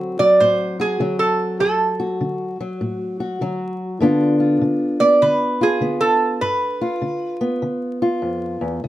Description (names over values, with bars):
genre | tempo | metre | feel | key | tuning
acoustic country blues, solo or duo | 100 BPM | 4/4 | swing 65% on 8ths | unclear | A4 = 440 Hz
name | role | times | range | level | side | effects
fingerpicked old ladder-braced acoustic guitar | accompaniment | 0.0-8.9 s | D2 to F#4 | -20 LUFS | left 1 dB | none
lap resonator guitar | melody | 0.2-7.4 s | G#4 to D5 | -17 LUFS | right 2 dB | none
room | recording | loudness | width
light reverb | close, detailed microphones, vinyl crackle | -17 LUFS | side -14 dB against mid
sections
0.0-8.9 A section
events
none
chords
0.0 D7; 4.0 G7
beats
0.40 1.00 | 1.60 2.20 2.80 3.40 | 4.00 4.60 5.20 5.80 | 6.41 7.01 7.61 8.21 | 8.82